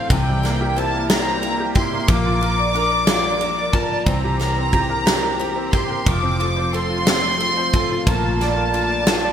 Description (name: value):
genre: six-eight pop ballad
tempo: 60 BPM (dotted quarters)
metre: 6/8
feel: straight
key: unclear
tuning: A4 = 440 Hz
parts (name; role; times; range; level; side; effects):
- warm studio violin section; second line; 0.0-9.3 s; G5 to D6; -22 LUFS; equal; none
- bright concert grand piano; accompaniment; 0.0-9.3 s; C3 to D5; -24 LUFS; right 2 dB; ensemble chorus
- picked steel-string acoustic guitar; arpeggios; 0.0-9.3 s; E3 to G4; -27 LUFS; left 7 dB; wide subtle chorus
- vintage muted fingered electric bass; bass; 0.0-9.3 s; F1 to C2; -24 LUFS; equal; none
- huge arena drum kit; drums; 0.1-9.2 s; kick drum, ride cymbal, snare drum; -22 LUFS; equal; gated reverb
room: light reverb, small room ambience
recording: bright 1980s-style digital production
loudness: -17 LUFS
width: side -9 dB against mid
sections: 0.0-9.3 A section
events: none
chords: 0.1 C7; 2.1 Bb; 4.1 C7; 6.1 F; 8.1 Bbmaj7